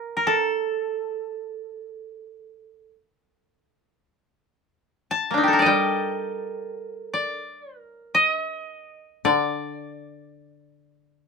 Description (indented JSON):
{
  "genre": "japanese traditional, Japanese chamber music",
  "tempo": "free time",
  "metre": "none",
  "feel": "none",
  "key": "D miyako bushi",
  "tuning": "A4 = 441 Hz",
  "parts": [
    { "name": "koto", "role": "melody", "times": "0.0-11.3 s", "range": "Bb3 to A5", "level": "-22 LUFS", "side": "equal", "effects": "none" },
    { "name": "koto", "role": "accompaniment", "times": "5.7-11.3 s", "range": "D3 to G3", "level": "-26 LUFS", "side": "left 5 dB", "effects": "none" }
  ],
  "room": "light reverb",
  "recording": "minimal, uncompressed stereo recording",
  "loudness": "-21 LUFS",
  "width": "side -4 dB against mid",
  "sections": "0.0-11.3 A section",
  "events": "none",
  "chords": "none"
}